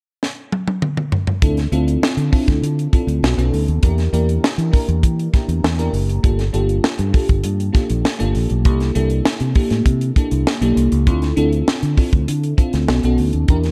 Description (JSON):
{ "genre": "polished 1980s jazz-funk pop", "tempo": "99 BPM", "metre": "4/4", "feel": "straight", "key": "D minor", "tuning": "A4 = 439 Hz", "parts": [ { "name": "tight funk drum kit", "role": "drums", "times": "0.2-13.7 s", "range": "hi-hat, kick drum, snare drum, toms", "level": "-20 LUFS", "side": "equal", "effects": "none" }, { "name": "bell-like FM electric piano", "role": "accompaniment", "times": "1.4-13.7 s", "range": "Bb3 to Bb4", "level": "-23 LUFS", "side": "equal", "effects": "phaser, analog chorus" }, { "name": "fingered electric bass", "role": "bass", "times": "1.4-13.7 s", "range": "F#1 to E3", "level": "-21 LUFS", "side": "equal", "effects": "none" } ], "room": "small room ambience", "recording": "dark, warm production", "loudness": "-18 LUFS", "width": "mono", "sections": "0.0-1.4 A section; 1.4-13.7 B section", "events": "drum fill 0.2-1.4", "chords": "0.0 N.C.; 1.4 Dm7; 3.2 B7; 3.8 Em7b5; 6.2 Gm7; 8.7 C13; 11.1 Dm7; 12.9 B7" }